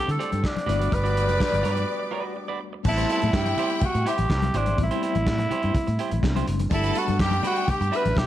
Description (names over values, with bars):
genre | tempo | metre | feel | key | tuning
disco | 124 BPM | 4/4 | straight | A dorian | A4 = 441 Hz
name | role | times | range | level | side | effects
breathy tenor saxophone | melody | 0.0-8.3 s | D4 to B4 | -27 LUFS | right 1 dB | none
clear symphonic string section | second line | 0.0-8.1 s | E4 to D6 | -31 LUFS | left 1 dB | none
barky tine electric piano | accompaniment | 0.0-8.3 s | G3 to G4 | -33 LUFS | left 6 dB | overdrive, fast stereo tremolo
clear horn section | stabs | 0.0-2.6 s | D3 to D5 | -34 LUFS | left 3 dB | none
electric guitar at the edge of break-up | accompaniment | 0.1-8.2 s | D4 to D5 | -33 LUFS | right 6 dB | none
fingered electric bass | bass | 0.1-8.3 s | F#1 to D3 | -25 LUFS | equal | none
warm soul drum kit | drums | 0.1-8.3 s | crash cymbal, handclaps, hi-hat, kick drum, snare drum | -28 LUFS | equal | none
congas | percussion | 0.3-8.3 s | none | -34 LUFS | left 4 dB | none
room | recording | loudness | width
light reverb, small room ambience | dark, warm production | -21 LUFS | side -12 dB against mid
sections
0.0-2.9 A section; 2.9-8.3 B section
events
break 1.9-2.9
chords
0.0 D7sus4; 0.7 Gmaj7; 2.9 Am7; 6.7 Gmaj7